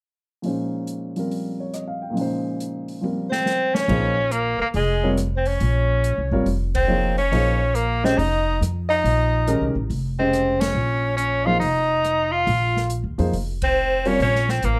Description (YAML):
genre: modal jazz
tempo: 140 BPM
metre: 4/4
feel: swing 66% on 8ths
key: Bb dorian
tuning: A4 = 440 Hz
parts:
  - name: warm baby grand piano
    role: accompaniment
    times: 0.4-14.2 s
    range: Bb2 to G5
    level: -27 LUFS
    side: equal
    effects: none
  - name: open jazz drum kit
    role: drums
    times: 0.4-14.8 s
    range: crash cymbal, hi-hat, kick drum, ride cymbal, rim click, snare drum, toms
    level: -33 LUFS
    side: equal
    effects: none
  - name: bright tenor saxophone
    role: melody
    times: 3.3-14.8 s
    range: Ab3 to F4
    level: -25 LUFS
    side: equal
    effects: none
  - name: growling alto saxophone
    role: second line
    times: 3.3-14.8 s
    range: Ab4 to F5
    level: -29 LUFS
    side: equal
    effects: none
  - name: upright bass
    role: bass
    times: 3.9-14.8 s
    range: F1 to F2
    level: -26 LUFS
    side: equal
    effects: none
room: moderate club ambience, RT60 0.5 s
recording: dark, warm production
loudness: -22 LUFS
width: mono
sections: 0.5-3.9 A section; 3.9-14.8 B section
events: drum fill 3.0-3.9; band accent 6.7, 10.5, 13.6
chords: 0.5 Bbm11